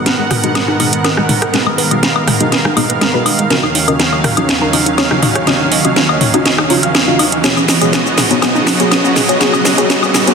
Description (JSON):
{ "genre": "progressive house", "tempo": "122 BPM", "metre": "4/4", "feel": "straight", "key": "G# dorian", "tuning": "A4 = 440 Hz", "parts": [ { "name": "supersaw pad", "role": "sustained chords", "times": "0.0-10.3 s", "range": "C#2 to F#5", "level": "-17 LUFS", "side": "right 2 dB", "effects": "none" }, { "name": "wide unison pluck", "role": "arpeggios", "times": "0.0-10.3 s", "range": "G#3 to E#5", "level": "-20 LUFS", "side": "right 1 dB", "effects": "tape echo" }, { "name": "deep mellow chord stab", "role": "stabs", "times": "0.0-10.3 s", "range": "B3 to D#5", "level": "-18 LUFS", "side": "left 2 dB", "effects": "chorus, phaser, tape echo" }, { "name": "riser", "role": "sound effects", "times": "3.8-10.3 s", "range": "none", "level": "-22 LUFS", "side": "right 2 dB", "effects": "none" }, { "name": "house drum kit", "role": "drums", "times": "0.1-10.3 s", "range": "cabasa, hi-hat, rim click, snare drum", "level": "-14 LUFS", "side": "right 1 dB", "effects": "none" }, { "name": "electronic toms, woodblock and congas", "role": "percussion", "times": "0.3-10.3 s", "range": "none", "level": "-20 LUFS", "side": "left 4 dB", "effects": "none" } ], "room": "wet recital hall reverb, RT60 1.5 s, digital ambience", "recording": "dense, heavily limited modern master, high-pass filter", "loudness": "-10 LUFS", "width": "side -5 dB against mid", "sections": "0.0-10.3 A section", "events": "build-up 0.0-10.3; drum fill 0.0-10.3; filter sweep on synth pluck 0.0-10.3; filter sweep on synth stab 0.0-10.3; riser 3.8-10.3", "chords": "0.0 G#m7; 3.5 D#m9; 7.4 C#7sus4" }